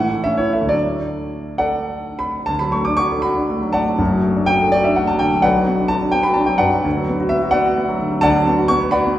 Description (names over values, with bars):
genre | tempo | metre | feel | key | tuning
classical, romantic character piece for solo piano | 65-88 BPM (dotted quarters) | 6/8 | rubato | D major | A4 = 445 Hz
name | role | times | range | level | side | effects
warm concert grand piano | solo | 0.0-9.2 s | F#1 to D6 | -15 LUFS | equal | none
room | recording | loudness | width
wet recital hall reverb, RT60 1.8 s | heard from further back in the room | -15 LUFS | side -13 dB against mid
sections
0.0-2.5 A section; 2.5-9.2 B section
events
none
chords
0.0 A; 0.7 D; 4.0 D/F#; 5.4 Bm; 6.9 Bm/D; 8.2 Bm7/D